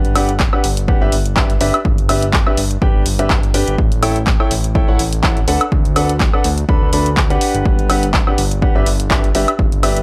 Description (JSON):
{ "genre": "piano house", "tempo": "124 BPM", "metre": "4/4", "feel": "swing 55% on 16ths", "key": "unclear", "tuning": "A4 = 438 Hz", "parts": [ { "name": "clear grand piano", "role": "riff", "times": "0.0-10.0 s", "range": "D4 to B5", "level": "-22 LUFS", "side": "equal", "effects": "sidechain pumping, analog delay" }, { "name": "fat analog bass", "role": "bass", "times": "0.0-10.0 s", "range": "G1 to D2", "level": "-22 LUFS", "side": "equal", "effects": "sidechain pumping" }, { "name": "punchy analog drum machine", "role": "drums", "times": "0.0-10.0 s", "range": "handclaps, hi-hat, woodblock", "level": "-22 LUFS", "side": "equal", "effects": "small room ambience" }, { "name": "electronic kick drum", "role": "drums", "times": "0.4-9.7 s", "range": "none", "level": "-19 LUFS", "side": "equal", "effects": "small room ambience" } ], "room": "digital ambience", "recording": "dry, gritty hardware recording", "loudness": "-15 LUFS", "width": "mono", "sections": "0.0-10.0 A section", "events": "none", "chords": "0.0 Gmaj7; 1.6 Em7/G; 3.8 A7; 5.5 D6; 7.4 Gmaj7; 9.3 Em7/G", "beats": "0.40 0.88 1.36 | 1.85 2.33 2.82 3.30 | 3.78 4.27 4.75 5.24 | 5.72 6.20 6.69 7.17 | 7.66 8.14 8.62 9.11 | 9.59" }